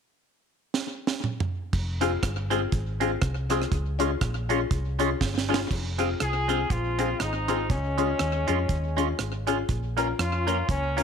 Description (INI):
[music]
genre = ska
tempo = 121 BPM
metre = 4/4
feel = swing 57% on 8ths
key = F minor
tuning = A4 = 440 Hz
[part]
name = deep reggae drum kit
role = drums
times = 0.7-11.0 s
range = crash cymbal, hi-hat, kick drum, rim click, snare drum, toms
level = -29 LUFS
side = right 3 dB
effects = slapback echo
[part]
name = hollow-body short-scale fingered electric bass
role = bass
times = 1.7-11.0 s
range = F1 to F2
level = -29 LUFS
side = equal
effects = none
[part]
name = semi-hollow electric guitar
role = accompaniment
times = 2.0-11.0 s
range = Ab3 to F4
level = -31 LUFS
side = right 12 dB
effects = phaser
[part]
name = tack piano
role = stabs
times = 2.0-11.0 s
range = C4 to Bb4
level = -30 LUFS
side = left 9 dB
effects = none
[part]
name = warm horn section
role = melody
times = 6.2-11.0 s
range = Ab3 to Ab4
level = -29 LUFS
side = left 1 dB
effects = none
[sound]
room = moderate plate reverb, RT60 1.5 s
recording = 1960s-style stereo with parts hard left and right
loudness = -24 LUFS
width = side -6 dB against mid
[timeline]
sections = 0.0-1.7 A section; 1.7-5.7 B section; 5.7-11.0 C section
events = drum fill 0.7-1.7, 5.2-5.7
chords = 0.0 N.C.; 1.7 Fm; 3.7 Db; 5.7 Fm; 7.7 Db; 9.7 Bbm